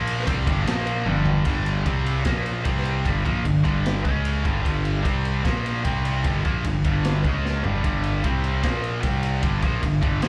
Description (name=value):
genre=hard rock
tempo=150 BPM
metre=4/4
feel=straight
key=G minor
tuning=A4 = 443 Hz
part: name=high-gain distorted guitar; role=riff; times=0.0-10.3 s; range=G2 to C#4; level=-28 LUFS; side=equal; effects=distortion, slapback echo
part: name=fuzz picked electric bass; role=bass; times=0.0-10.3 s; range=G1 to C#2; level=-27 LUFS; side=equal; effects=overdrive
part: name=raw garage drum kit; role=drums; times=0.1-10.3 s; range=crash cymbal, kick drum, ride cymbal, snare drum, toms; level=-28 LUFS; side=equal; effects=none
room=little or no reverb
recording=live gig heard through the venue's PA, club reverb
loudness=-23 LUFS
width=mono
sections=0.0-1.5 A section; 1.5-10.3 B section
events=drum fill 1.1-1.5, 7.4-7.8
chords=0.3 G5; 0.7 Bb5; 1.1 G5; 1.9 C5; 2.3 Bb5; 2.7 C5; 3.1 Gm; 4.0 C#5; 4.5 G5; 5.0 C5; 5.4 Bb5; 5.8 C5; 6.2 Gm; 7.2 C#5; 7.6 G5; 8.2 C5; 8.6 Bb5; 9.0 C5; 9.4 Gm